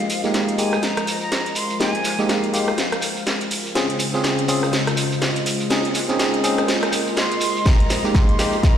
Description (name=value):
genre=deep house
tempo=123 BPM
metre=4/4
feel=swing 59% on 16ths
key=F minor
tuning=A4 = 440 Hz
part: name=silver concert flute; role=melody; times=0.0-3.2, 7.2-8.8 s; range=F5 to C6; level=-28 LUFS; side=equal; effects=tape echo
part: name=warm analog pad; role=sustained chords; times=0.0-8.8 s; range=Db3 to F5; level=-27 LUFS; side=left 2 dB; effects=chorus, sidechain pumping
part: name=house drum kit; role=drums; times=0.0-8.7 s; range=hi-hat, rim click, snare drum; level=-24 LUFS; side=equal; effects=high-pass filter on hats, high-pass filter on snare, high-pass filter on room
part: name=warbly tape-like pad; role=texture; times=0.0-8.8 s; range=Db3 to G5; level=-30 LUFS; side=right 2 dB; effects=chorus, built-in reverb, sidechain pumping
part: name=vintage brush drum kit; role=drums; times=0.1-8.8 s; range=hi-hat, snare drum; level=-32 LUFS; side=equal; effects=high-pass filter on hats, high-pass filter on snare, high-pass filter on room
part: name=shekere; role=percussion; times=0.1-8.8 s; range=none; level=-30 LUFS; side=right 2 dB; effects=none
part: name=barky tine electric piano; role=stabs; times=0.2-8.6 s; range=Ab3 to Ab4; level=-23 LUFS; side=equal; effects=auto-pan, sidechain pumping, low-pass filter, tape echo
part: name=electronic kick drum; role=drums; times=7.7-8.7 s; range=none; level=-15 LUFS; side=equal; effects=none
room=wet echo chamber reverb, RT60 2.0 s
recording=played on a big sound system in a bare room, stone room reverb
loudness=-18 LUFS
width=side -9 dB against mid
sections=0.0-8.8 A section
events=build-up 0.0-8.8; drum fill 0.0-8.8; filter sweep on tine electric piano 0.0-8.8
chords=0.0 Fm11; 3.8 Dbmaj7; 5.7 Bbm11; 7.7 Fm11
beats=0.34 0.83 1.32 | 1.80 2.29 2.78 3.27 | 3.76 4.24 4.73 5.22 | 5.71 6.20 6.68 7.17 | 7.66 8.15 8.63